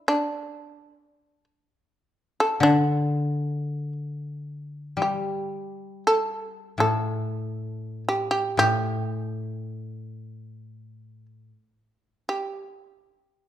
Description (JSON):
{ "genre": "japanese traditional, Japanese chamber music", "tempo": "free time", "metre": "none", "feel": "none", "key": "unclear", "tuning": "A4 = 440 Hz", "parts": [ { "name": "shamisen", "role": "melody", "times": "0.0-13.5 s", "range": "D4 to A4", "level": "-24 LUFS", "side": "right 1 dB", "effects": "none" }, { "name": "koto", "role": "accompaniment", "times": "2.6-11.5 s", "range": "A2 to G3", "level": "-27 LUFS", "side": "left 2 dB", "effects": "none" } ], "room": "moderate recital hall reverb, RT60 1.4 s", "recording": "minimal, uncompressed stereo recording", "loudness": "-24 LUFS", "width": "side -12 dB against mid", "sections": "0.0-4.2 A section; 4.2-13.5 A section", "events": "none", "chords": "none" }